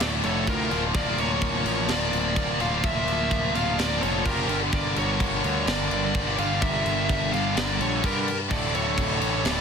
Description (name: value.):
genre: heavy metal.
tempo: 127 BPM.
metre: 4/4.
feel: straight.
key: unclear.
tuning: A4 = 441 Hz.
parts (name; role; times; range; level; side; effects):
high-gain lead guitar; melody; 0.0-9.6 s; Bb4 to F5; -29 LUFS; equal; distortion, ping-pong delay.
high-gain lead guitar; second line; 0.0-9.6 s; F4 to D5; -35 LUFS; right 6 dB; distortion, ping-pong delay.
tight distorted guitar; riff; 0.0-9.6 s; D2 to F3; -29 LUFS; left 1 dB; distortion.
tight distorted guitar; riff; 0.0-9.6 s; D2 to Bb3; -30 LUFS; equal; distortion.
fuzz picked electric bass; bass; 0.0-9.6 s; D1 to G2; -30 LUFS; equal; overdrive.
tight metal drum kit; drums; 0.0-9.6 s; crash cymbal, kick drum, snare drum; -28 LUFS; left 1 dB; soft clipping on kick.
room: small room reverb.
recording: dense, heavily limited modern master.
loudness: -22 LUFS.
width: side -6 dB against mid.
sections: 0.0-9.6 A section.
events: half time 0.0-9.6.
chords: 0.0 Dm; 0.7 Bb/D; 4.5 Gm; 8.5 D5.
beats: 0.00 0.47 | 0.94 1.42 1.89 2.37 | 2.84 3.31 3.78 4.25 | 4.73 5.20 5.67 6.14 | 6.61 7.08 7.56 8.03 | 8.50 8.97 9.44.